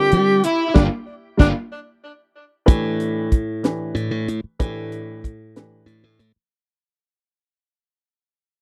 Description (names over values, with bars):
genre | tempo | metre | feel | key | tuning
electric jazz fusion | 63 BPM (dotted quarters) | 6/8 | straight | unclear | A4 = 440 Hz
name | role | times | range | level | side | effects
breathy tenor saxophone | melody | 0.0-1.5 s | D4 to G4 | -21 LUFS | equal | tape echo
crunchy overdriven guitar | second line | 0.0-1.5 s | D4 to G4 | -28 LUFS | equal | none
dark grand piano | accompaniment | 0.0-6.2 s | D3 to B4 | -27 LUFS | equal | none
glassy slap bass | bass | 0.1-6.4 s | G1 to G3 | -24 LUFS | equal | none
tight funk drum kit | drums | 0.1-6.3 s | hi-hat, kick drum, snare drum | -18 LUFS | equal | none
room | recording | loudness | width
little or no reverb | dry, close 1970s-style studio recording | -20 LUFS | mono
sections
0.0-2.7 A section; 2.7-6.5 B section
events
band accent 0.8-2.7; grand piano fill 1.7-2.7; drum fill 2.4-2.7; fade-out 2.7-6.5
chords
0.0 Gm7; 2.7 Asus2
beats
| 0.75 1.71 | 2.67 3.63 | 4.59 5.54